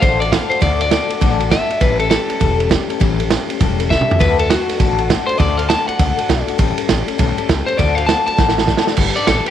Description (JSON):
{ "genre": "rockabilly", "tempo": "201 BPM", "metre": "4/4", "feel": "swing 63% on 8ths", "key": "D major", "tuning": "A4 = 440 Hz", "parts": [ { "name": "electric guitar at the edge of break-up", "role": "melody", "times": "0.0-9.5 s", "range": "F#4 to A5", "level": "-19 LUFS", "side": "left 2 dB", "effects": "spring reverb, tape echo" }, { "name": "picked steel-string acoustic guitar", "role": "accompaniment", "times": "0.0-9.5 s", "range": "A2 to B4", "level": "-21 LUFS", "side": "left 13 dB", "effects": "none" }, { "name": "upright bass", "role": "bass", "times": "0.0-9.5 s", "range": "E1 to D2", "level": "-20 LUFS", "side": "equal", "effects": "none" }, { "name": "vintage drum kit", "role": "drums", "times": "0.0-9.5 s", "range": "crash cymbal, kick drum, ride cymbal, snare drum, toms", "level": "-17 LUFS", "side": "right 4 dB", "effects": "none" } ], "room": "light reverb, studio reverb", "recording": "1960s-style stereo", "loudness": "-13 LUFS", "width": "side -10 dB against mid", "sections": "0.0-9.0 A section", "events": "clean electric guitar solo 0.0-9.0; drum fill 3.9, 8.4-9.0", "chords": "0.0 D; 1.8 A7; 4.2 D; 6.6 A7; 7.8 D; 9.0 G" }